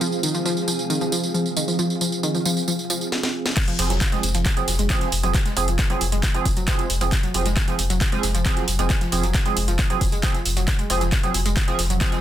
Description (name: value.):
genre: driving peak-time techno.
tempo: 135 BPM.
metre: 4/4.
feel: straight.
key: F minor.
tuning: A4 = 438 Hz.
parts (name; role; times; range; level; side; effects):
wide unison pluck; riff; 0.0-12.2 s; Eb3 to Ab3; -27 LUFS; left 1 dB; overdrive, sidechain pumping, tape echo.
sync-sweep polysynth; stabs; 0.0-12.2 s; F3 to Ab4; -28 LUFS; right 5 dB; chorus, sidechain pumping, digital delay.
overtone-sweeping drone; drone; 0.0-3.1 s; F3; -32 LUFS; right 3 dB; chorus, built-in reverb, sidechain pumping.
techno drum kit; drums; 0.0-12.2 s; crash cymbal, handclaps, hi-hat, snare drum, tambourine; -26 LUFS; right 1 dB; sidechain pumping on perc, studio reverb, sidechain pumping on hats, sidechain pumping on cymbals.
granular cloud pad; texture; 0.0-3.1 s; C4 to F5; -30 LUFS; equal; built-in reverb, sidechain pumping.
dusty soul sampler-style drum kit; drums; 3.6-12.2 s; hi-hat, snare drum, tambourine; -35 LUFS; left 3 dB; overdrive, sidechain pumping on perc, high-pass filter on perc, studio reverb, high-pass filter on snare, sidechain pumping on hats, high-pass filter on hats, high-pass filter on room.
electronic kick drum; drums; 3.6-12.1 s; none; -22 LUFS; equal; studio reverb.
warm sub bass; bass; 3.8-12.0 s; F1; -23 LUFS; equal; tube saturation, sidechain pumping, low-pass filter.
room: light reverb.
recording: dense, heavily limited modern master.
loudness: -19 LUFS.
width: side -12 dB against mid.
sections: 0.0-3.6 A section; 3.6-12.2 B section.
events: drum fill 3.1-3.6; drop 3.6-12.2.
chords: 0.0 Fm.